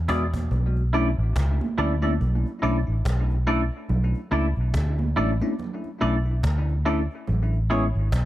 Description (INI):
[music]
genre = lovers rock reggae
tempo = 71 BPM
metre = 4/4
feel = swing 59% on 16ths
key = unclear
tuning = A4 = 440 Hz
[part]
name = vintage muted fingered electric bass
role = bass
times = 0.0-8.3 s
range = G#1 to E2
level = -23 LUFS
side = equal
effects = none
[part]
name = bell-like tine electric piano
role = accompaniment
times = 0.1-7.9 s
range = G#3 to F#4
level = -29 LUFS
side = left 2 dB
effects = wide subtle chorus, dub echo
[part]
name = twangy electric guitar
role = stabs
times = 0.1-7.8 s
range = E4 to D5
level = -29 LUFS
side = right 2 dB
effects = wide subtle chorus
[part]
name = cajon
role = drums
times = 0.1-8.3 s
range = none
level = -32 LUFS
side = equal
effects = none
[part]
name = congas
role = percussion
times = 0.3-7.5 s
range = none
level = -32 LUFS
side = right 4 dB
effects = none
[sound]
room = small room ambience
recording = dark, warm production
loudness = -21 LUFS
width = side -14 dB against mid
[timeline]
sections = 0.5-8.3 A section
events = drum fill 0.0-0.5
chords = 0.0 E7; 0.5 Bm11; 7.3 Amaj9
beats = | 0.51 1.36 2.20 3.05 | 3.90 4.74 5.59 6.43 | 7.28 8.12